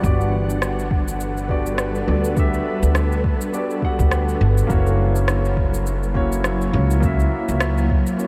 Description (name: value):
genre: sunset chillout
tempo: 103 BPM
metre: 4/4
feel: swing 57% on 16ths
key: unclear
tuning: A4 = 440 Hz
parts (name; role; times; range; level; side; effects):
- dark grand piano; accompaniment; 0.0-8.3 s; A#3 to F#5; -27 LUFS; equal; analog delay
- ethereal airy pad; sustained chords; 0.0-8.3 s; F#3 to F#5; -28 LUFS; equal; ensemble chorus, built-in reverb
- upright bass; bass; 0.0-8.0 s; F#1 to D2; -22 LUFS; equal; none
- electronic kick drum; drums; 0.0-8.0 s; none; -24 LUFS; equal; none
- electronic shaker and rim click; drums; 0.0-8.3 s; none; -32 LUFS; equal; none
room: moderate huge ambient reverb, RT60 8.5 s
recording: dreamy mix soaked in reverb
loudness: -20 LUFS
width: mono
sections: 0.0-8.3 A section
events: none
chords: 0.0 Gmaj7; 4.7 F#7